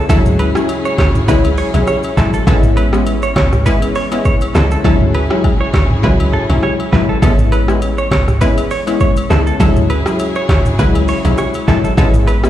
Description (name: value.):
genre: afrobeats.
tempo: 101 BPM.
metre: 4/4.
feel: swing 55% on 16ths.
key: unclear.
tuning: A4 = 438 Hz.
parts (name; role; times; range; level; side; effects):
warm studio string section; sustained chords; 0.0-12.5 s; C#3 to G#4; -22 LUFS; left 2 dB; none.
direct-recorded clean electric guitar; riff; 0.0-12.4 s; A4 to C#5; -21 LUFS; right 4 dB; wide subtle chorus, ping-pong delay.
woody log drum bass; bass; 0.0-12.5 s; G#1 to D2; -14 LUFS; equal; none.
analog pluck; accompaniment; 0.1-12.5 s; F#3 to E4; -17 LUFS; left 2 dB; chorus.
afro-pop drum kit; drums; 0.1-12.5 s; handclaps, hi-hat, kick drum, rim click, shaker, toms; -16 LUFS; equal; none.
agogo bells and woodblock; percussion; 0.1-12.4 s; none; -30 LUFS; left 4 dB; none.
room: digital ambience.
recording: played on a big sound system in a bare room, stone room reverb.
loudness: -11 LUFS.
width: side -12 dB against mid.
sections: 0.0-12.5 A section.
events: hi-hats muted 4.8-7.2.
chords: 0.1 Dmaj9#11; 2.5 Amaj7; 4.8 Dmaj9#11; 7.2 Amaj7; 9.6 Dmaj9#11; 12.0 Amaj7.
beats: | 0.10 0.69 1.28 1.88 | 2.47 3.07 3.66 4.25 | 4.85 5.44 6.04 6.63 | 7.22 7.82 8.41 9.01 | 9.60 10.20 10.79 11.38 | 11.98.